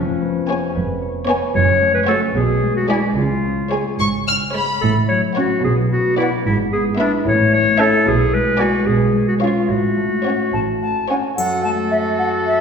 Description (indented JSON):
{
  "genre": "cinematic, playful, whimsical film cue",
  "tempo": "74 BPM (dotted quarters)",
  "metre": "6/8",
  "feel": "straight",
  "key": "F# minor",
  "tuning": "A4 = 435 Hz",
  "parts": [
    { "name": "clear clarinet", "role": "second line", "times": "0.0-12.6 s", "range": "C#4 to C#5", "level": "-19 LUFS", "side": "left 1 dB", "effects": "none" },
    { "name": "concert harp", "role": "arpeggios", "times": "0.0-12.6 s", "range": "E#2 to G#5", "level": "-22 LUFS", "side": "left 2 dB", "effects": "none" },
    { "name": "dark studio double bass section", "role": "bass", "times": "0.0-11.2 s", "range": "E#1 to C#2", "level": "-24 LUFS", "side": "right 3 dB", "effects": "none" },
    { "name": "warm studio cello section", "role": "bass", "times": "0.0-11.2 s", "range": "E#2 to C#3", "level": "-24 LUFS", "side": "right 3 dB", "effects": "none" },
    { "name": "warm studio violin section", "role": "melody", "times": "0.5-11.3 s", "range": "E#5 to E#6", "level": "-25 LUFS", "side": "left 1 dB", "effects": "none" },
    { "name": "clear studio violin section", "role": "second line", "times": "0.5-11.3 s", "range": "C#5 to E5", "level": "-28 LUFS", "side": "left 1 dB", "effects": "none" },
    { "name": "dark studio viola section", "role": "accompaniment", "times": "0.5-11.3 s", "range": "G#3 to C#4", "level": "-28 LUFS", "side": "right 2 dB", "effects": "none" },
    { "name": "silver concert flute", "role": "second line", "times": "10.5-12.6 s", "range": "E5 to A5", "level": "-20 LUFS", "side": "left 1 dB", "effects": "none" },
    { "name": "warm oboe", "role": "second line", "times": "11.4-12.6 s", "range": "A4", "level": "-23 LUFS", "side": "equal", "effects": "none" },
    { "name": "triangle", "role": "percussion", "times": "11.4-12.4 s", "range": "none", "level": "-31 LUFS", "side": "left 1 dB", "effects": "none" }
  ],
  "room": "wet scoring stage reverb, RT60 1.7 s",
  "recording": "heard from further back in the room",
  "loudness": "-15 LUFS",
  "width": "side -6 dB against mid",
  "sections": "0.0-11.4 A section; 11.4-12.6 A section",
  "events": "none",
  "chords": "0.0 C#7/E#; 1.5 F#m; 2.4 G#dim/B; 3.2 C#; 4.8 F#m/A; 5.6 Bm; 6.5 E/G#; 7.3 A; 8.1 G#dim/B; 8.9 C#7/B; 9.7 F#m/A; 11.4 F#m"
}